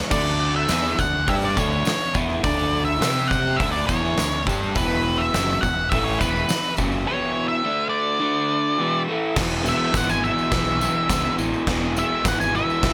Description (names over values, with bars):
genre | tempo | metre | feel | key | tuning
garage rock duo or trio | 104 BPM | 4/4 | straight | unclear | A4 = 440 Hz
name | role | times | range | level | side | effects
overdriven combo organ | sustained chords | 0.0-12.9 s | C4 to E5 | -38 LUFS | equal | none
crunchy overdriven guitar | riff | 0.0-12.9 s | E2 to C5 | -27 LUFS | equal | none
octave-fuzz lead guitar | melody | 0.1-12.9 s | B4 to G#5 | -26 LUFS | equal | distortion
fuzz fingered electric bass | bass | 0.1-12.9 s | E1 to C3 | -30 LUFS | equal | overdrive
oversized low-tuned drum kit | drums | 0.1-12.9 s | crash cymbal, hi-hat, kick drum, snare drum | -28 LUFS | equal | none
tambourine | percussion | 0.1-12.9 s | none | -39 LUFS | equal | none
room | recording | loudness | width
light reverb | none | -22 LUFS | mono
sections
0.1-9.4 A section; 9.4-12.9 B section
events
none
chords
0.1 D5; 3.0 C5; 3.6 D5; 4.8 E5; 7.6 D5; 8.8 E5; 9.4 E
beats
| 0.11 0.70 1.28 1.86 | 2.44 3.02 3.60 4.18 | 4.75 5.33 5.91 6.48 | 7.06 7.63 8.21 8.79 | 9.36 9.94 10.51 11.09 | 11.67 12.25 12.82